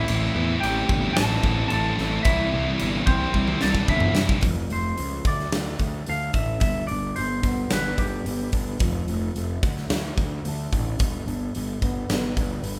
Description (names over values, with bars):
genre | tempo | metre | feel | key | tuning
quiet-loud alternative rock | 110 BPM | 4/4 | straight | unclear | A4 = 440 Hz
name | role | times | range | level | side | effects
clean electric guitar | melody | 0.0-8.5 s | C4 to A5 | -31 LUFS | equal | none
scooped high-gain guitar | riff | 0.0-4.4 s | A2 to E4 | -30 LUFS | equal | distortion
thick fuzz guitar | riff | 0.0-4.4 s | A2 to E4 | -31 LUFS | equal | distortion
fuzz picked electric bass | bass | 0.1-12.8 s | F1 to G2 | -30 LUFS | equal | overdrive
big rock drum kit | drums | 0.1-12.8 s | crash cymbal, hi-hat, kick drum, snare drum, toms | -28 LUFS | equal | none
fingerpicked steel-string acoustic guitar | arpeggios | 4.4-12.8 s | D3 to B4 | -36 LUFS | equal | none
room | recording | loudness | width
light reverb | band playing live in one room | -24 LUFS | mono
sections
0.0-4.4 A section; 4.4-12.8 B section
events
drum fill 3.3-4.4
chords
0.0 Am; 2.3 C; 4.4 F; 5.3 D5; 6.6 G; 8.8 F; 9.6 D5; 11.0 G